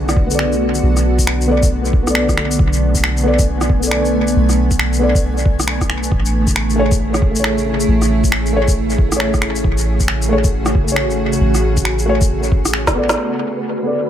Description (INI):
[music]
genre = future garage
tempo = 136 BPM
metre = 4/4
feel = swing 62% on 16ths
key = B dorian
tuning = A4 = 441 Hz
[part]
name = granular cloud pad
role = sustained chords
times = 0.0-14.1 s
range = C#3 to G#5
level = -20 LUFS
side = right 1 dB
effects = built-in reverb, sidechain pumping
[part]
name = soft 808-style bass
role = bass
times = 0.0-13.2 s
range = A1 to B1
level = -19 LUFS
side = equal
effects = sidechain pumping
[part]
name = electronic rim click, shaker, finger snaps and snare drum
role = drums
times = 0.1-13.2 s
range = none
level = -20 LUFS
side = equal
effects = overdrive, studio reverb, dub echo
[part]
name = electronic kick drum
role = drums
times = 0.2-12.9 s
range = none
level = -16 LUFS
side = equal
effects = studio reverb
[part]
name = felt-muted upright piano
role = accompaniment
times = 0.3-14.0 s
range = A3 to D5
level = -20 LUFS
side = left 1 dB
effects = vintage 12-bit sampler grit, sidechain pumping, low-pass filter, dub echo
[part]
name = flickering grainy texture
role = texture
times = 13.5-14.1 s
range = B4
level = -28 LUFS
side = right 4 dB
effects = built-in reverb
[sound]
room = light reverb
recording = echo-heavy mix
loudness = -13 LUFS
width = side -10 dB against mid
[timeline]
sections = 0.0-13.2 A section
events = drum fill 12.8-13.2; band accent 13.1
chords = 0.0 Bm7; 6.1 Amaj7; 13.2 Bm7